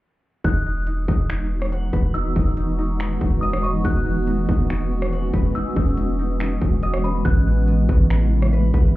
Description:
hip hop, atmospheric cloud-rap; 141 BPM; 4/4; half-time; E major; A4 = 440 Hz
delicate synth tine bell; melody; 0.4-8.9 s; B5 to F#6; -31 LUFS; equal; chorus, phaser, low-pass filter, tape echo
granular cloud pad; sustained chords; 1.3-9.0 s; C#3 to F#4; -26 LUFS; equal; built-in reverb
concert harp; arpeggios; 0.4-9.0 s; B3 to F#5; -32 LUFS; left 2 dB; low-pass filter, tape echo
long sustained 808-style bass; bass; 0.4-9.0 s; E1 to A1; -21 LUFS; equal
industrial drum kit; drums; 0.4-8.8 s; finger snaps, hi-hat, kick drum, rim click; -22 LUFS; equal
digital ambience; heard muffled through a wall, club reverb, EQ; -18 LUFS; side -17 dB against mid
0.4-9.0 A section
0.4 Emaj9; 7.3 Amaj9

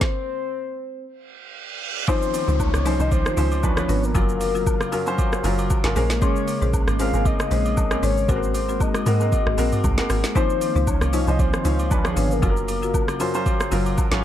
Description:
amapiano; 116 BPM; 4/4; swing 55% on 16ths; Db major; A4 = 441 Hz
soft octave-layered synth lead; melody; 0.0-13.2 s; Bb4 to F5; -28 LUFS; left 4 dB; chorus, phaser, tape echo
warm baby grand piano; accompaniment; 0.0-14.2 s; F3 to Db5; -27 LUFS; right 1 dB
afro-pop drum kit; drums; 0.0-14.2 s; hi-hat, kick drum, rim click, shaker, snare drum, toms; -23 LUFS; equal; overdrive
reverse cymbal and downlifter; sound effects; 1.3-6.2 s; -33 LUFS; right 3 dB
warm analog pad; sustained chords; 2.1-14.2 s; Db3 to F5; -30 LUFS; equal; chorus, sidechain pumping
folk marimba with medium hard mallets; stabs; 2.1-13.9 s; C4 to C6; -30 LUFS; left 7 dB; tape echo
agogo bells and woodblock; percussion; 2.1-14.2 s; -34 LUFS; left 3 dB
deep log drum bass; bass; 2.5-14.2 s; Gb1 to Ab2; -23 LUFS; equal
little or no reverb; dark, warm production; -19 LUFS; side -11 dB against mid
0.0-2.1 A section; 2.1-14.2 B section
stop 0.0-2.1; reverse cymbal 1.3-2.1
0.0 N.C.; 2.1 Dbmaj9; 3.6 Db7b9; 4.2 Gbmaj7; 6.0 Bbm9; 8.3 Ab9; 10.4 Dbmaj9; 11.9 Db7b9; 12.4 Gbmaj7

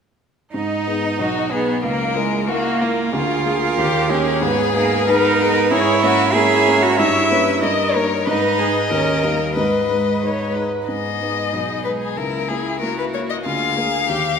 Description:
quick classical-period movement for piano quintet; 93 BPM; 2/4; straight; G# minor; A4 = 440 Hz
clear violin; second line; 0.5-14.4 s; G#3 to E5; -26 LUFS; left 2 dB
rich cello; second line; 0.5-14.4 s; G#3 to G#4; -21 LUFS; right 6 dB
clear viola; accompaniment; 0.5-14.4 s; G#3 to E5; -25 LUFS; right 2 dB
dark baby grand piano; accompaniment; 0.5-14.4 s; B1 to Db5; -22 LUFS; equal
warm violin; melody; 1.2-14.4 s; E4 to E#5; -22 LUFS; left 6 dB
wet concert hall reverb, RT60 1.8 s; minimal, uncompressed stereo recording; -16 LUFS; side -6 dB against mid
0.5-10.9 A section; 10.9-14.4 A section
0.5 G#m; 1.2 G#m/B; 1.8 A#dim/C#; 3.1 A#7/D; 3.8 D#; 4.4 G#m; 5.7 A#m7b5/G#; 7.0 Gdim7; 7.6 D#7/G; 8.3 G#m; 8.9 D#7; 9.6 G#m; 11.5 G#m/B; 12.2 A#dim/C#; 13.5 A#7/D

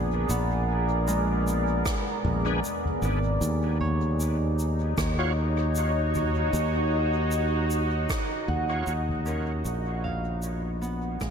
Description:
ambient dub; 77 BPM; 4/4; swing 55% on 16ths; Eb minor; A4 = 438 Hz
deep dark ambient pad; sustained chords; 0.0-11.3 s; Cb4 to Eb5; -29 LUFS; equal; chorus, built-in reverb
Celtic harp; arpeggios; 0.0-11.3 s; Ab3 to Gb5; -35 LUFS; right 2 dB; dub echo
modern bright fingered electric bass; bass; 0.0-11.3 s; Ab1 to Eb2; -26 LUFS; equal
soft-mallet drum kit; drums; 0.3-11.3 s; rim click, shaker, toms; -36 LUFS; left 1 dB; dub echo
electronic kick drum; drums; 1.9-11.3 s; -31 LUFS; equal
overdriven tonewheel organ; stabs; 2.5-8.9 s; D4 to Db5; -37 LUFS; left 2 dB; chorus vibrato, slow rotary speaker, dub echo
light reverb, small room reverb; -24 LUFS; side -7 dB against mid
0.0-11.3 A section
fade-out 7.6-11.3
0.0 Bb7b9; 3.4 Ebm9; 9.7 Bb7(no3)

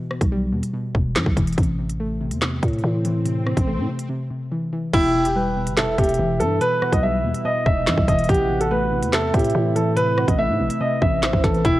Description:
hip hop, drill; 143 BPM; 4/4; half-time; A4 = 440 Hz
soft round pluck; accompaniment; 0.0-11.8 s; B2 to A3; -26 LUFS; left 1 dB; chorus
drill drum kit; drums; 0.1-11.7 s; crash cymbal, handclaps, hi-hat, kick drum, rim click, snare drum; -22 LUFS; equal
growling 808-style bass; bass; 0.2-11.8 s; E1 to A2; -24 LUFS; equal
swell; sound effects; 2.8-4.1 s; -33 LUFS; right 1 dB
dark baby grand piano; melody; 4.9-11.8 s; E4 to E5; -21 LUFS; equal
soft octave-layered synth lead; second line; 4.9-11.8 s; B4 to G5; -28 LUFS; right 2 dB; chorus, tremolo, ping-pong delay
glassy FM pad; sustained chords; 6.1-11.8 s; G3 to B4; -32 LUFS; equal; ensemble chorus, built-in reverb
light reverb; worn, warbling old tape, cassette tape, warbly pitch drift; -18 LUFS; side -16 dB against mid
0.0-4.9 A section; 4.9-11.8 B section
swell 2.8-4.9; break 4.1-4.9
0.0 Em; 1.6 Am; 4.9 Em; 8.3 Amadd9

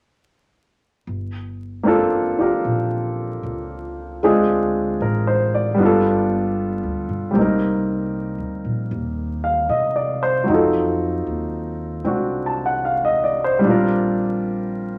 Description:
jazz ballad; 76 BPM; 4/4; swing 68% on 8ths; G minor; A4 = 440 Hz
upright bass; bass; 1.1-15.0 s; G1 to C3; -30 LUFS; equal
clear baby grand piano; accompaniment; 1.8-15.0 s; Gb3 to A5; -21 LUFS; equal
wet club reverb, RT60 0.7 s; vinyl crackle; -20 LUFS; mono
1.1-15.0 A section
1.1 Gm11; 4.2 Dm7b5; 5.8 G7; 7.4 Cm9; 10.5 F7b9; 13.7 Bb6

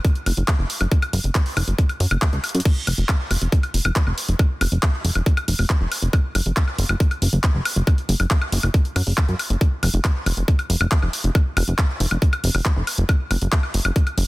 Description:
psychedelic trance; 138 BPM; 4/4; straight; A4 = 439 Hz
drum and bass drum kit; drums; 0.0-14.3 s; crash cymbal, handclaps, hi-hat, woodblock; -25 LUFS; equal; overdrive
electronic kick drum; drums; 0.0-14.0 s; -18 LUFS; equal
plucky analog bass; bass; 0.3-14.2 s; F1 to Gb2; -20 LUFS; equal
little or no reverb; dense, heavily limited modern master; -18 LUFS; side -20 dB against mid
0.0-2.7 A section; 2.7-14.3 B section
drum fill 2.4; drop 2.7-14.3

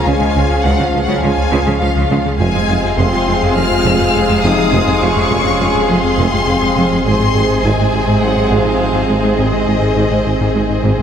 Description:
cinematic, hybrid orchestral and electronic film score; 103 BPM; 4/4; straight; A4 = 444 Hz
warm symphonic violin section; melody; 0.0-11.0 s; Eb5 to F6; -21 LUFS; left 5 dB
warm symphonic violin section; second line; 0.0-11.0 s; F4 to F5; -20 LUFS; left 1 dB
warm symphonic viola section; accompaniment; 0.0-11.0 s; Ab3 to Db4; -23 LUFS; right 1 dB
clear trombone section; sustained chords; 0.0-11.0 s; C3 to Ab3; -22 LUFS; right 3 dB
warm analog pad; sustained chords; 0.0-11.0 s; Ab3 to Ab4; -24 LUFS; equal
pure sine sub bass; bass; 0.0-11.0 s; F1 to Db2; -24 LUFS; equal
dark French horn section; sustained chords; 0.1-11.0 s; Db3 to F4; -22 LUFS; left 4 dB
harp-like synth pluck; arpeggios; 0.1-11.0 s; Db3 to Ab4; -24 LUFS; right 3 dB
round analog bass; riff; 0.1-11.0 s; Db2 to Ab3; -21 LUFS; left 2 dB
clear symphonic double bass section; bass; 0.1-10.9 s; F1 to Db2; -24 LUFS; right 3 dB
rich studio cello section; bass; 0.1-11.0 s; F2 to Db3; -22 LUFS; right 3 dB
warm tuba; bass; 0.1-10.9 s; F1 to Db2; -24 LUFS; right 3 dB
moderate scoring stage reverb, RT60 1.5 s; -12 LUFS; side -8 dB against mid
0.0-11.0 A section
0.0 Db; 2.4 Fm; 7.1 Ab

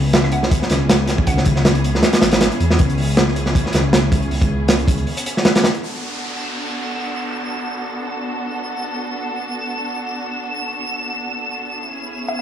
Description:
drum and bass, jungle; 158 BPM; 4/4; swing 55% on 16ths; B dorian; A4 = 441 Hz
warm studio string section; sustained chords; 0.0-12.4 s; B3 to A4; -26 LUFS; equal; low-pass filter
dark detuned saw bass; bass; 0.0-5.1 s; G#1 to E2; -19 LUFS; equal
hollow square pluck; melody; 0.1-1.8, 12.3-12.4 s; E5 to F#5; -28 LUFS; equal; chorus, dub echo
crunchy breakbeat drum kit; drums; 0.1-5.8 s; hi-hat, kick drum, snare drum; -16 LUFS; equal
downlifter; sound effects; 5.8-8.9 s; -29 LUFS; equal
twinkling granular texture; texture; 6.4-12.4 s; E7; -28 LUFS; equal; built-in reverb
light reverb, small room ambience; dry, gritty hardware recording, studio ambience; -17 LUFS; side -10 dB against mid
0.0-5.8 A section; 5.8-12.4 B section
drop 0.0-5.8
0.0 C#m7; 5.8 Bm7; 11.9 C#m7

